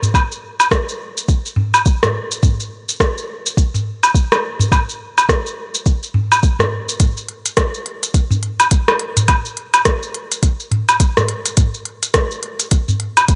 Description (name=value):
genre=downtempo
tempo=105 BPM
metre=4/4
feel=swing 60% on 16ths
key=none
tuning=none
part: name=organic electronic drum kit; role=drums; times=0.0-13.4 s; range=hi-hat, rim click, shaker, woodblock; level=-18 LUFS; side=equal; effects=none
part: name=udu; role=percussion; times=0.0-13.0 s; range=none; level=-21 LUFS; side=equal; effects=none
part: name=electronic kick drum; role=drums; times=0.1-13.4 s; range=none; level=-17 LUFS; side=equal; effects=none
room=light reverb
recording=dry, gritty hardware recording, nothing above 10.7 kHz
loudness=-17 LUFS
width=mono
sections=0.0-13.4 A section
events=none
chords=none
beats=| 0.14 0.71 1.29 1.86 | 2.43 3.00 3.57 4.14 | 4.71 5.29 5.86 6.43 | 7.00 7.57 8.14 8.71 | 9.29 9.86 10.43 11.00 | 11.57 12.14 12.71 13.29